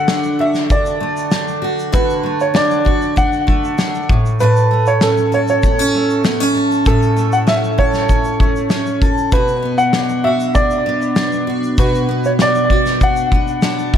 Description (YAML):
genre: acoustic pop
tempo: 98 BPM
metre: 4/4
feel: straight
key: A major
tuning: A4 = 441 Hz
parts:
  - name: dark upright piano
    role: melody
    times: 0.0-13.9 s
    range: A4 to F#5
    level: -18 LUFS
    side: right 1 dB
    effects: tape echo
  - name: picked steel-string acoustic guitar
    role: accompaniment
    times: 0.0-14.0 s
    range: A2 to A4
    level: -17 LUFS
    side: equal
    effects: double-tracked left and right
  - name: loose indie drum kit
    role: drums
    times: 0.1-14.0 s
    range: kick drum, shaker, snare drum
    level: -18 LUFS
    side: equal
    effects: none
room: moderate spring reverb, RT60 2.3 s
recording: echo-heavy mix, faint mains hum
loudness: -13 LUFS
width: side -9 dB against mid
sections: 0.0-14.0 A section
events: none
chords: 0.0 D; 4.1 A; 9.3 Bm